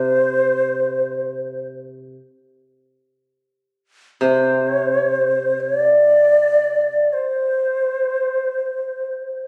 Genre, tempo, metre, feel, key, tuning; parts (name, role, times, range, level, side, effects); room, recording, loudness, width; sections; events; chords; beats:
japanese traditional, Japanese chamber music; free time; A4 = 440 Hz
shakuhachi; melody; 0.0-9.5 s; C5 to D5; -19 LUFS; equal
koto; accompaniment; 0.0-7.0 s; C3; -28 LUFS; equal
light reverb; recorded on a phone in the room, studio reverb; -19 LUFS; mono
0.0-9.5 A section
free time